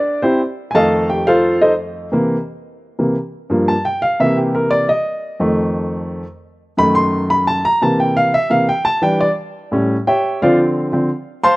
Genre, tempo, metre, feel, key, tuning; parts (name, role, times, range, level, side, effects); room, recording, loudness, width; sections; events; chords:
jazz; 174 BPM; 4/4; straight; A4 = 440 Hz
warm grand piano; solo; 0.0-11.6 s; F2 to C6; -14 LUFS; equal
little or no reverb; dry, close 1970s-style studio recording; -14 LUFS; side -20 dB against mid
0.0-11.6 A section
grand piano solo 0.0-11.6
0.0 C; 0.7 F7; 2.1 C7; 3.5 Gm7; 4.2 C7; 4.9 F7; 6.3 F#dim7; 7.6 C7; 9.0 Em7; 9.7 A7; 10.4 Dm7